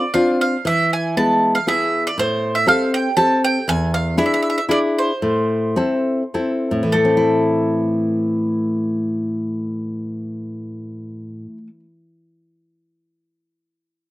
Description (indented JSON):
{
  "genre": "italian folk",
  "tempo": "99-120 BPM",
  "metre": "3/4",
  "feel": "rubato",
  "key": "A minor",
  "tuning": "A4 = 443 Hz",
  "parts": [
    { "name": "bowl-back mandolin", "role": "melody", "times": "0.0-11.7 s", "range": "A4 to A5", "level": "-19 LUFS", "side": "right 1 dB", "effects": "none" },
    { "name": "nylon-string guitar", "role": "accompaniment", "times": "0.0-11.9 s", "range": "E2 to A4", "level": "-19 LUFS", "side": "left 1 dB", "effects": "slapback echo" }
  ],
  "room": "little or no reverb",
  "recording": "recorded outdoors, with no room sound",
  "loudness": "-16 LUFS",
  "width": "side -16 dB against mid",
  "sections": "0.0-6.9 A section; 6.9-10.5 B section",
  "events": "slowing down 3.7-6.9",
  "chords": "0.0 Dm7; 0.6 E; 2.2 Am7; 3.7 E7; 5.2 Am",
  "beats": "0.12 | 0.64 1.16 1.67 | 2.17 2.68 3.18 | 3.68 4.18 4.69 | 5.21 5.76 6.33 | 6.92 7.52 8.11 | 8.70 9.28 9.87"
}